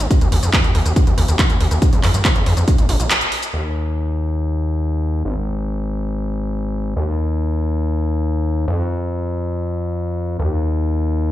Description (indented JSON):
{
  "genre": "uplifting trance",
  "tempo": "140 BPM",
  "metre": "4/4",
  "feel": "straight",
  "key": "unclear",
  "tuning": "A4 = 440 Hz",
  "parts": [
    { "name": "gritty driven synth bass", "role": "bass", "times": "0.0-11.3 s", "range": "Ab1 to G2", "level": "-18 LUFS", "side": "equal", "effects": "sidechain pumping" },
    { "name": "techno drum kit", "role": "drums", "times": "0.0-3.5 s", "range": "handclaps, hi-hat, shaker", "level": "-21 LUFS", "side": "equal", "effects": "low-pass filter on hats, low-pass filter on perc, low-pass filter on snare, low-pass filter on room" },
    { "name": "electronic kick drum", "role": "drums", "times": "0.1-2.8 s", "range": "none", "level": "-16 LUFS", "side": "equal", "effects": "none" }
  ],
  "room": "little or no reverb",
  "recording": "played on a big sound system in a bare room, stone room reverb",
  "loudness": "-16 LUFS",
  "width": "side -14 dB against mid",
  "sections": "0.0-3.5 A section; 3.5-11.3 B section",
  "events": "break 3.1-3.5; band accent 3.1",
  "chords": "none"
}